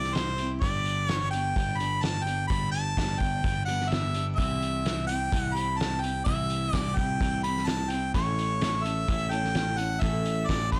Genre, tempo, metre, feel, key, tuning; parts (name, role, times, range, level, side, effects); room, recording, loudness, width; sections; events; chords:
folk rock and heartland rock; 128 BPM; 4/4; straight; A4 = 440 Hz
bright harmonica; melody; 0.0-10.8 s; C5 to B5; -32 LUFS; equal
picked steel-string acoustic guitar; accompaniment; 0.0-10.8 s; G2 to A4; -39 LUFS; equal; plate reverb
picked electric bass; bass; 0.0-10.8 s; G1 to C2; -33 LUFS; equal
loose indie drum kit; drums; 0.0-10.8 s; hi-hat, kick drum, snare drum; -33 LUFS; equal
light reverb; blown-out, overdriven recording, overdrive; -28 LUFS; mono
0.0-10.8 A section
0.0 C; 0.6 G; 4.4 C; 8.1 A